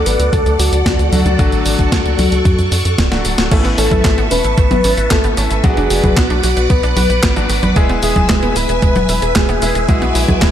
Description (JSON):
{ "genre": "italo disco", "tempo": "113 BPM", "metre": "4/4", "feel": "straight", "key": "unclear", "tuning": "A4 = 440 Hz", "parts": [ { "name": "soft octave-layered synth lead", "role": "melody", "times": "0.0-10.5 s", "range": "D4 to B4", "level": "-19 LUFS", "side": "left 2 dB", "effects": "chorus, vintage 12-bit sampler grit, tape echo" }, { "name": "phased string machine", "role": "sustained chords", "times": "0.0-10.5 s", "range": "A4 to E6", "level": "-20 LUFS", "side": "equal", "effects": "ensemble chorus, phaser" }, { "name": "clear concert grand piano", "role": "stabs", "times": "0.0-10.5 s", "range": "F#3 to G#4", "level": "-23 LUFS", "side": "left 2 dB", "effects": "none" }, { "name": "tight sequencer bass", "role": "bass", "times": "0.0-10.5 s", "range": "D1 to F#2", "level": "-17 LUFS", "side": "equal", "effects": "tube saturation" }, { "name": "clean 12-bit digital drum machine", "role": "drums", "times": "0.1-10.5 s", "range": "cabasa, congas, crash cymbal, handclaps, hi-hat, snare drum", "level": "-18 LUFS", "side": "equal", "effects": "gated reverb" }, { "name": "electronic kick drum", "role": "drums", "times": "0.3-10.5 s", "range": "none", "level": "-15 LUFS", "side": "equal", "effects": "none" }, { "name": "analog pluck", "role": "arpeggios", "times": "3.5-10.5 s", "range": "G#3 to B4", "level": "-23 LUFS", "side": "right 4 dB", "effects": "chorus, digital delay" } ], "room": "little or no reverb", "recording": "none", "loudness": "-11 LUFS", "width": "side -10 dB against mid", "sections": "0.0-3.5 A section; 3.5-10.5 B section", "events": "drum fill 3.1-3.5", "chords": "0.0 D; 3.5 Aadd9; 5.6 Bm; 7.8 E" }